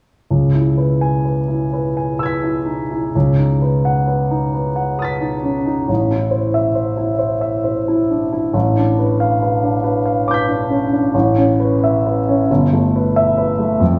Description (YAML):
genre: classical, impressionist solo piano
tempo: 42-46 BPM (dotted quarters)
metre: 6/8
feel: rubato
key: C# minor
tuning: A4 = 440 Hz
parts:
  - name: clear concert grand piano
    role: solo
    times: 0.3-14.0 s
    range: G1 to B6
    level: -17 LUFS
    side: equal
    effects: none
room: wet scoring stage reverb, RT60 1.5 s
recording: recorded in a church or concert hall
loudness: -17 LUFS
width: mono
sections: 0.3-14.0 A section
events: none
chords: 0.3 C#m7; 3.1 B9/C#; 5.9 Am; 8.5 G9/A; 11.1 Aadd9; 12.5 G69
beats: | 0.31 1.74 | 3.15 4.54 | 5.89 7.22 | 8.54 9.84 | 11.14 12.49 | 13.81